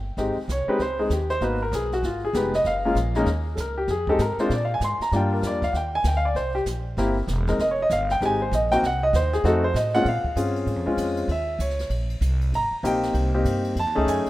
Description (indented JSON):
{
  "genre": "jazz piano trio",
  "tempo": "194 BPM",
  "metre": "4/4",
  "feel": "swing 62% on 8ths",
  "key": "F minor",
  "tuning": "A4 = 439 Hz",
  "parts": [
    { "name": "upright bass", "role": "bass", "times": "0.0-14.3 s", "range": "E1 to Bb2", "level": "-26 LUFS", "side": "equal", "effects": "none" },
    { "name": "clear concert grand piano", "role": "melody", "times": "0.2-14.3 s", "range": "Bb2 to C6", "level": "-23 LUFS", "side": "left 1 dB", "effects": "none" },
    { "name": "jazz brush drum kit", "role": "drums", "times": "0.2-14.3 s", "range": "brushed snare drum, hi-hat, kick drum, ride cymbal, snare drum", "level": "-36 LUFS", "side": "right 1 dB", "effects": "none" }
  ],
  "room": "moderate plate reverb, RT60 1.9 s, small room ambience",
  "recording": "rough home demo mix",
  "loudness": "-21 LUFS",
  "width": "side -16 dB against mid",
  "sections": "0.2-10.1 A section; 10.1-14.3 A section",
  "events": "grand piano solo 0.2-14.3",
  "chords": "0.2 Abadd11; 1.4 Abm7; 2.0 Fm9b5; 2.6 Gbmaj7; 3.9 Fm; 4.5 Abadd9; 5.1 Ebmaj7; 6.4 C7; 7.6 Fm7; 8.8 Cdim; 9.4 F7b9; 10.1 Bbm7; 11.3 Eb5; 12.5 Abmaj9; 13.8 F7alt",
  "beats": "| 0.17 0.48 0.79 1.10 | 1.41 1.72 2.03 2.34 | 2.65 2.96 3.27 3.58 | 3.89 4.20 4.51 4.82 | 5.13 5.43 5.74 6.05 | 6.36 6.67 6.98 7.29 | 7.59 7.90 8.21 8.52 | 8.83 9.14 9.44 9.75 | 10.06 10.37 10.68 10.98 | 11.29 11.60 11.91 12.22 | 12.52 12.83 13.14 13.45 | 13.76 14.06"
}